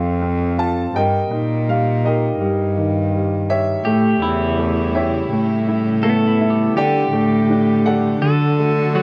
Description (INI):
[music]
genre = acoustic folk-pop ballad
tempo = 82 BPM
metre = 4/4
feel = straight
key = unclear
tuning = A4 = 440 Hz
[part]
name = clear concert grand piano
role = melody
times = 0.0-9.0 s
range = D3 to A5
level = -22 LUFS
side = equal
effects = none
[part]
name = warm cello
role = bass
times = 0.0-9.0 s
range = E2 to D3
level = -21 LUFS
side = equal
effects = none
[part]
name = pedal steel guitar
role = second line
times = 3.8-9.0 s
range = F#4 to A4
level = -26 LUFS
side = equal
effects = none
[part]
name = warm studio string section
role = sustained chords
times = 3.9-9.0 s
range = C#3 to G4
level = -30 LUFS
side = equal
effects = none
[part]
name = semi-hollow electric guitar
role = arpeggios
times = 4.2-9.0 s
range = F#3 to G4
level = -28 LUFS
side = equal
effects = tremolo
[sound]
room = little or no reverb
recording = dry, close 1970s-style studio recording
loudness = -18 LUFS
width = mono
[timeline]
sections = 0.0-9.0 A section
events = none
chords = 0.0 F; 0.9 Eb/G; 3.9 A7; 6.8 Dsus4; 8.2 D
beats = 0.22 | 0.95 1.68 2.40 3.13 | 3.86 4.58 5.31 6.04 | 6.76 7.49 8.22 8.95